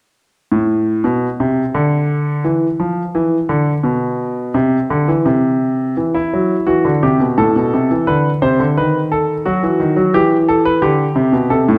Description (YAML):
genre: classical, baroque-style two-part invention for grand piano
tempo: 86 BPM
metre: 4/4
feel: straight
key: unclear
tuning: A4 = 440 Hz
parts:
  - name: clear concert grand piano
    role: solo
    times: 0.5-11.8 s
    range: A2 to C5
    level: -16 LUFS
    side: equal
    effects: none
room: wet recital hall reverb, RT60 1.6 s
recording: dark, warm production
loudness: -16 LUFS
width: mono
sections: 0.3-11.8 A section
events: none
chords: 0.3 N.C.; 6.0 Em; 7.4 Amadd9; 8.8 B7/D#; 10.1 Em